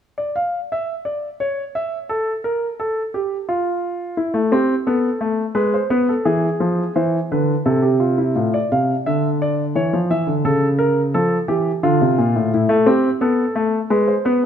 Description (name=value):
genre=classical, baroque-style two-part invention for grand piano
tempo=86 BPM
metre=3/4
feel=straight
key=D minor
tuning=A4 = 440 Hz
part: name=warm concert grand piano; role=solo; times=0.2-14.5 s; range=A2 to F5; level=-17 LUFS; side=equal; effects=none
room=moderate scoring stage reverb, RT60 1.7 s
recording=close, detailed microphones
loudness=-17 LUFS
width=side -8 dB against mid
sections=0.0-8.4 A section; 8.4-14.5 B section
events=none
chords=0.0 N.C.; 4.2 Am; 5.6 G#m; 6.2 E7; 7.7 Am/C; 8.4 Dm/A; 9.8 Dmadd9; 10.4 A7/C#; 11.8 Dm; 12.5 Am; 13.9 G#m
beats=| 0.01 0.71 1.41 | 2.10 2.79 3.48 | 4.17 4.86 5.55 | 6.25 6.95 7.66 | 8.36 9.05 9.75 | 10.45 11.14 11.84 | 12.53 13.22 13.91